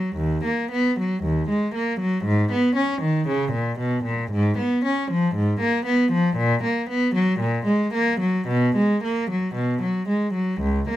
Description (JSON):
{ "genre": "classical, baroque-style suite movement for unaccompanied cello", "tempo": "52-60 BPM", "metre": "4/4", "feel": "rubato", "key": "unclear", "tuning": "A4 = 440 Hz", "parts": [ { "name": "rich cello", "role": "solo", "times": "0.0-11.0 s", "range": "C#2 to C#4", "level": "-20 LUFS", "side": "equal", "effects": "none" } ], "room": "light reverb", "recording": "close, detailed microphones", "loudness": "-20 LUFS", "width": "side -13 dB against mid", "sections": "0.0-11.0 A section", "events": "none", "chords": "none", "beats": "| 0.17 1.25 2.27 3.30 | 4.34 5.37 6.37 7.41 | 8.49 9.56 10.62" }